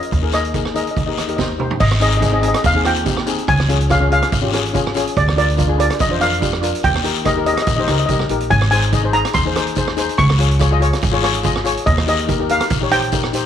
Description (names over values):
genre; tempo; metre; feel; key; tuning
calypso; 143 BPM; 4/4; straight; Ab major; A4 = 441 Hz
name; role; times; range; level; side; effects
steel pan; melody; 0.0-13.5 s; D5 to Db6; -20 LUFS; equal; none
steel pan; accompaniment; 0.0-13.5 s; C4 to Eb5; -21 LUFS; left 4 dB; none
street-band drum kit; drums; 0.0-13.4 s; crash cymbal, hi-hat, kick drum, rim click, snare drum, toms; -22 LUFS; right 4 dB; none
upright bass; bass; 0.1-13.4 s; Ab1 to F2; -19 LUFS; equal; none
guiro; percussion; 0.1-13.4 s; none; -27 LUFS; left 12 dB; none
room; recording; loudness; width
light reverb; 1960s-style stereo; -14 LUFS; side -9 dB against mid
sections
0.0-1.8 A section; 1.8-13.5 B section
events
drum fill 1.4-1.8; steel pan fill 11.2-11.9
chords
0.1 Ebsus4; 1.0 Eb; 1.8 Ab; 3.5 Db; 5.2 Bb/D; 6.8 Eb; 8.5 Ab; 10.2 Db; 11.9 Eb